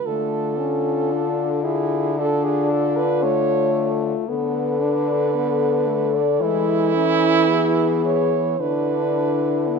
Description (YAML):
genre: classical, lyrical piece for horn quartet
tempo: 56 BPM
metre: 4/4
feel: rubato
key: unclear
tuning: A4 = 439 Hz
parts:
  - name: dark French horn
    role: melody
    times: 0.0-9.8 s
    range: E4 to A4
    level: -24 LUFS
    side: left 12 dB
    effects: none
  - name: warm French horn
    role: second line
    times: 0.0-9.8 s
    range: E4 to D5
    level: -22 LUFS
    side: right 7 dB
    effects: none
  - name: mellow French horn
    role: accompaniment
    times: 0.1-9.8 s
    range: G#3 to E4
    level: -26 LUFS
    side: left 4 dB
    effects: none
  - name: clear French horn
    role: bass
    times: 0.1-9.8 s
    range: D3 to E3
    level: -25 LUFS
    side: right 1 dB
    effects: none
room: moderate concert hall reverb, RT60 2.1 s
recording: close, detailed microphones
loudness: -18 LUFS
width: side -5 dB against mid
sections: 0.0-9.8 A section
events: none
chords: 0.0 Dm; 4.3 Bm7/D; 6.4 E; 8.6 E5/D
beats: | 0.04 1.10 2.17 3.23 | 4.29 5.35 6.40 7.48 | 8.59 9.67